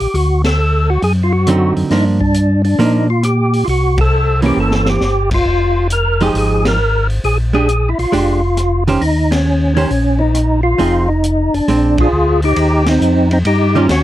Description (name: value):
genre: soul jazz organ trio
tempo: 135 BPM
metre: 4/4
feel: swing 68% on 8ths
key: unclear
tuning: A4 = 440 Hz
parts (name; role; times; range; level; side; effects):
- percussive tonewheel organ; melody; 0.0-14.0 s; C4 to Bb4; -15 LUFS; equal; slow rotary speaker, overdrive, chorus vibrato
- mellow tonewheel organ; bass; 0.0-14.0 s; F1 to Bb2; -15 LUFS; equal; chorus vibrato, slow rotary speaker
- open jazz drum kit; drums; 0.0-14.0 s; crash cymbal, hi-hat, kick drum, ride cymbal, rim click, snare drum; -23 LUFS; equal; none
- archtop guitar, miked and amplified; accompaniment; 1.5-13.9 s; D3 to C5; -15 LUFS; right 4 dB; none
room: little or no reverb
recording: dry, close 1970s-style studio recording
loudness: -12 LUFS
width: side -14 dB against mid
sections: 0.0-12.6 A section; 12.6-14.0 B section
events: band accent 0.4, 3.9, 6.6, 9.2, 11.9, 12.8; drum fill 4.6-5.0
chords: 0.1 D7b9; 1.9 Gm7; 3.7 C7b9; 5.5 Fm9; 7.2 Bb13; 9.0 Eb5; 10.8 Fm7; 11.7 Bb9; 12.6 Ebadd9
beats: | 0.14 0.58 1.02 1.47 | 1.91 2.35 2.79 3.24 | 3.68 4.13 4.57 5.01 | 5.46 5.90 6.35 6.79 | 7.24 7.68 8.12 8.57 | 9.01 9.46 9.90 10.35 | 10.79 11.23 11.68 12.12 | 12.56 13.01 13.45 13.89